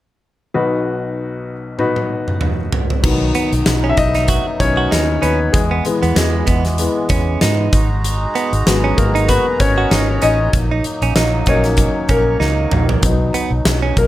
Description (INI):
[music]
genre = piano-driven pop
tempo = 96 BPM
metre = 4/4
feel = swing 56% on 16ths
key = B major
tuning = A4 = 440 Hz
[part]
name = warm upright piano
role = accompaniment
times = 0.5-14.1 s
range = B1 to E5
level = -19 LUFS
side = left 3 dB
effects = none
[part]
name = huge arena drum kit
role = drums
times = 1.8-14.1 s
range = crash cymbal, hi-hat, kick drum, snare drum, toms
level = -18 LUFS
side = equal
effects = none
[part]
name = hand-pumped harmonium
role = sustained chords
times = 3.0-14.1 s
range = B2 to A#5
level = -25 LUFS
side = right 2 dB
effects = none
[part]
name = vintage muted fingered electric bass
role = bass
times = 3.0-14.1 s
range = G#1 to G#2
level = -18 LUFS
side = equal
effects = none
[part]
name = direct-recorded clean electric guitar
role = riff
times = 3.4-14.0 s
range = G#3 to F#4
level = -21 LUFS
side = right 7 dB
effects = none
[sound]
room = light reverb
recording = none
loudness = -14 LUFS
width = side -14 dB against mid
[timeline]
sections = 0.5-3.0 A section; 3.0-14.1 B section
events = drum fill 1.8-3.0, 12.4-13.0; upright piano solo 3.0-14.1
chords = 0.5 B; 5.5 E; 7.7 G#m7; 10.5 D#m/A#; 13.0 B